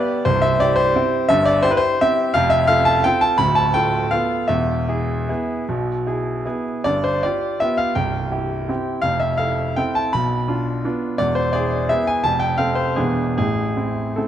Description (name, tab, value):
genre	classical, piano waltz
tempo	146-181 BPM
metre	3/4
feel	rubato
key	unclear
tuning	A4 = 436 Hz
part	bright grand piano	solo	0.0-14.3 s	C1 to B5	-17 LUFS	equal	none
room	moderate scoring stage reverb, RT60 2.0 s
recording	dark, warm production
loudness	-17 LUFS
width	side -10 dB against mid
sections	0.0-14.3 A section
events	none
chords	0.2 C; 2.3 F; 3.4 Bm7b5/D; 4.5 E; 6.8 G7; 8.0 C; 9.0 Fmaj7; 10.1 Bdim; 11.2 E7; 12.2 F; 13.0 E7; 13.4 Am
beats	| 0.24 0.59 0.94 | 1.28 1.64 2.00 | 2.34 2.68 3.04 | 3.39 3.74 4.12 | 4.50 4.89 5.28 | 5.67 6.05 6.44 | 6.84 7.22 7.60 | 7.96 8.32 8.69 | 9.04 9.40 9.78 | 10.13 10.49 10.85 | 11.20 11.54 11.90 | 12.24 12.60 12.98 | 13.38 13.77 14.17